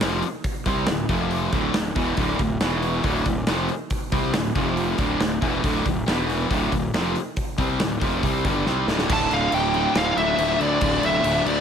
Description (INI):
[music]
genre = heavy metal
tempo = 139 BPM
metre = 4/4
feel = straight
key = D minor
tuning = A4 = 440 Hz
[part]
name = distorted electric guitar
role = riff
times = 0.0-11.6 s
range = D2 to C4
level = -27 LUFS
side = right 13 dB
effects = distortion
[part]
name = heavy high-gain guitar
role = riff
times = 0.0-11.6 s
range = D2 to C4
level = -26 LUFS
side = left 11 dB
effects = distortion
[part]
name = fuzz fingered electric bass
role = bass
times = 0.0-11.6 s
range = D1 to D2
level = -27 LUFS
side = equal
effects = overdrive
[part]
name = big rock drum kit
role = drums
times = 0.0-11.6 s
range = crash cymbal, hi-hat, kick drum, snare drum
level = -26 LUFS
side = equal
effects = none
[part]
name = high-gain lead guitar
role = melody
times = 9.1-11.6 s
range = D5 to A5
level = -22 LUFS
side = equal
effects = distortion
[part]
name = dark studio string section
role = sustained chords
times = 9.1-11.6 s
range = none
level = barely audible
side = none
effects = none
[part]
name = sludgy distorted guitar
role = riff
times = 9.1-11.6 s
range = D2 to D3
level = -31 LUFS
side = equal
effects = none
[sound]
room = light reverb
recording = none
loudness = -20 LUFS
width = side -7 dB against mid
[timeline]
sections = 0.0-9.1 A section; 9.1-11.6 B section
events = drum fill 8.7-9.1; half time 9.1-11.6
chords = 0.0 Dm; 1.1 F5; 1.5 D5; 2.6 E5; 3.0 Dm; 4.6 F5; 5.0 D5; 6.1 E5; 6.5 Dm